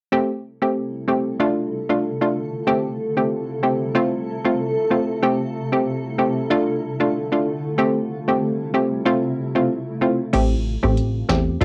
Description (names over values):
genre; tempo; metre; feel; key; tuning
dancehall; 94 BPM; 4/4; swing 56% on 16ths; A minor; A4 = 440 Hz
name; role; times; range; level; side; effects
hollow square pluck; accompaniment; 0.1-11.6 s; A3 to G4; -22 LUFS; equal; chorus, cassette tape
granular cloud pad; sustained chords; 0.9-10.3 s; C3 to A4; -29 LUFS; equal; built-in reverb, cassette tape
plucky analog bass; bass; 10.3-11.6 s; A1 to E2; -24 LUFS; equal; none
booming analog drum machine; drums; 10.3-11.6 s; crash cymbal, finger snaps, hi-hat, kick drum, snare drum; -24 LUFS; equal; cassette tape
room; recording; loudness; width
light reverb; home recording on cassette; -21 LUFS; mono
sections
0.1-10.3 A section; 10.3-11.6 B section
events
none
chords
0.1 Am7; 1.4 Dm; 2.7 Am7; 4.0 F; 5.2 Am7; 6.5 Dm; 7.8 Am7; 9.1 F; 10.3 Am7